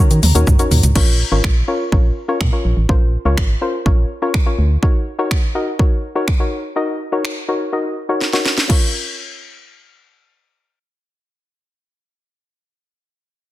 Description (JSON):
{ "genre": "dance-pop", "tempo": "124 BPM", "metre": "4/4", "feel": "straight", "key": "Bb minor", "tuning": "A4 = 440 Hz", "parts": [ { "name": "soft round pluck", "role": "accompaniment", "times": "0.0-11.7 s", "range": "Db4 to Eb5", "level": "-21 LUFS", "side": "left 2 dB", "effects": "chorus, sidechain pumping, low-pass filter" }, { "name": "organ-like FM bass", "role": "bass", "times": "0.1-4.8 s", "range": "Ab1 to Eb3", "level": "-15 LUFS", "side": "equal", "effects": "sidechain pumping" }, { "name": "house drum kit", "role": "drums", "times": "0.1-8.8 s", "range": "crash cymbal, finger snaps, hi-hat, kick drum, shaker, snare drum, toms", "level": "-16 LUFS", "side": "equal", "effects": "overdrive" } ], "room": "digital ambience", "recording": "dense, heavily limited modern master", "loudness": "-14 LUFS", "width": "side -15 dB against mid", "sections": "1.0-8.7 A section; 8.7-12.6 B section", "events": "drum fill 0.0-1.0, 8.2-8.7", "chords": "0.0 Ebm7; 1.0 Bbm; 4.8 Ebm7; 8.7 Bbm", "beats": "0.47 | 0.95 1.44 1.92 2.41 | 2.89 3.37 3.86 4.34 | 4.83 5.31 5.79 6.28 | 6.76 7.25 7.73 8.21 | 8.70 9.18 9.66 10.15 | 10.63 11.12 11.60" }